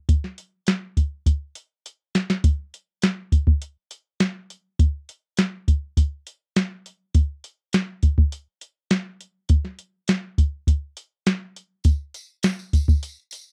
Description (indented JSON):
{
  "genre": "indie pop",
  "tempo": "102 BPM",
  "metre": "4/4",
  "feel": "straight",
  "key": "none",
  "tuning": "none",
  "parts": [
    { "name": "soft vintage rhythm box", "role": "drums", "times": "0.1-13.5 s", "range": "hi-hat, kick drum, snare drum", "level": "-21 LUFS", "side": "equal", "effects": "overdrive" },
    { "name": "tambourine", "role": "percussion", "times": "11.8-13.5 s", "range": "none", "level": "-42 LUFS", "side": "equal", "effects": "none" }
  ],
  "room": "little or no reverb",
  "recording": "dry, close 1970s-style studio recording",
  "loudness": "-24 LUFS",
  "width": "mono",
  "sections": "0.0-2.4 A section; 2.4-13.5 B section",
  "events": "drum fill 1.3-2.4",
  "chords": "none",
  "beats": "| 0.09 0.68 1.26 1.85 | 2.44 3.03 3.62 4.20 | 4.79 5.38 5.97 6.56 | 7.14 7.73 8.32 8.91 | 9.50 10.09 10.67 11.26 | 11.85 12.44 13.03"
}